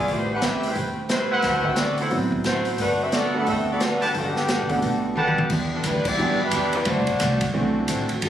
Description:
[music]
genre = jazz, big band swing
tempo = 177 BPM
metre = 4/4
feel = swing 62% on 8ths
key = G major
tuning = A4 = 436 Hz
[part]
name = warm saxophone section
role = melody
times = 0.0-7.6 s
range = D3 to G5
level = -24 LUFS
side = equal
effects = none
[part]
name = bright trumpet section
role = stabs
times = 0.0-1.7, 4.0-5.5 s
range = E4 to A5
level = -26 LUFS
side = equal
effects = none
[part]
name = upright bass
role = bass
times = 0.0-8.3 s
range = E1 to F#2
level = -30 LUFS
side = right 1 dB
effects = none
[part]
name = picked steel-string acoustic guitar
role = accompaniment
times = 0.1-8.3 s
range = D3 to B4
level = -30 LUFS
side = left 1 dB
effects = none
[part]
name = swinging big-band drum kit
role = drums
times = 0.1-8.3 s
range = crash cymbal, hi-hat, kick drum, ride cymbal, snare drum, toms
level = -28 LUFS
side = equal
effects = none
[part]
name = clear grand piano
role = accompaniment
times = 2.1-8.1 s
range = E3 to F#5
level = -26 LUFS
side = right 2 dB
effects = none
[sound]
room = moderate scoring stage reverb, RT60 2.1 s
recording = recorded on a phone in the room, club reverb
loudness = -20 LUFS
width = side -10 dB against mid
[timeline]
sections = 0.0-5.5 A section; 5.5-8.3 B section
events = drum fill 5.2-5.5; band accent 6.0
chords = 0.1 Am9; 1.4 D13; 2.8 Gmaj9; 5.5 Em7; 6.9 D7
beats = | 0.08 0.42 0.76 1.10 | 1.44 1.77 2.11 2.45 | 2.79 3.13 3.47 3.81 | 4.15 4.49 4.83 5.17 | 5.50 5.84 6.18 6.52 | 6.86 7.20 7.54 7.88 | 8.22

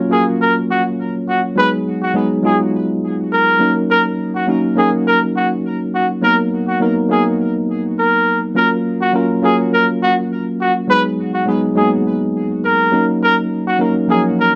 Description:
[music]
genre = afrobeats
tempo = 103 BPM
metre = 4/4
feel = straight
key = F# major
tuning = A4 = 440 Hz
[part]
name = mellow tine electric piano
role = accompaniment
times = 0.0-14.6 s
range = E#3 to C#5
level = -18 LUFS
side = equal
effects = none
[part]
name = mellow trumpet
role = melody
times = 0.1-14.5 s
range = F#4 to B4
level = -18 LUFS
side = equal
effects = none
[sound]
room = moderate studio reverb, RT60 0.6 s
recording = dark, warm production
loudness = -16 LUFS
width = mono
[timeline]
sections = 0.0-14.6 A section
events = none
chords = 0.0 F#maj7; 1.6 G#m7; 3.6 D#m7; 6.2 Bmaj7; 8.6 F#maj7; 10.9 G#m7; 12.9 D#m7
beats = 0.40 0.99 | 1.57 2.15 2.73 3.32 | 3.90 4.48 5.06 5.65 | 6.23 6.81 7.39 7.98 | 8.56 9.14 9.72 10.31 | 10.89 11.47 12.05 12.64 | 13.22 13.80 14.38

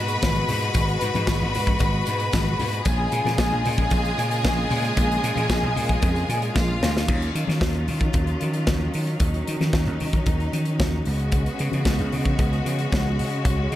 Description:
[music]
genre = disco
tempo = 113 BPM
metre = 4/4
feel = straight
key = unclear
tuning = A4 = 440 Hz
[part]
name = clear studio string section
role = second line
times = 0.0-7.1 s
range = E#4 to B5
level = -26 LUFS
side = left 1 dB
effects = tape echo
[part]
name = bright studio string section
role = sustained chords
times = 0.0-13.8 s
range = A#2 to F#4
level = -28 LUFS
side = equal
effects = none
[part]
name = vintage slap bass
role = bass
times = 0.0-13.8 s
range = G#1 to D#3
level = -24 LUFS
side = equal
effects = none
[part]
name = modern studio drum kit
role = drums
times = 0.1-13.8 s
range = crash cymbal, hi-hat, kick drum, snare drum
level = -25 LUFS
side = equal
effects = none
[part]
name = tambourine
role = percussion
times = 0.1-7.1 s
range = none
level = -43 LUFS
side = right 6 dB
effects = none
[part]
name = congas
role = percussion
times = 0.2-13.6 s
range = none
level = -33 LUFS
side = left 4 dB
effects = none
[sound]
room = light reverb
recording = none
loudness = -20 LUFS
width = side -13 dB against mid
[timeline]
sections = 0.0-7.1 A section; 7.1-13.8 B section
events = drum fill 6.6-7.1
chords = 0.0 G#m9; 2.9 A#m7; 7.1 D#m9; 11.1 C#7sus4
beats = 0.22 | 0.75 1.27 1.80 2.33 | 2.86 3.38 3.91 4.44 | 4.97 5.50 6.02 6.55 | 7.08 7.61 8.14 8.67 | 9.20 9.73 10.26 10.79 | 11.32 11.86 12.39 12.92 | 13.45

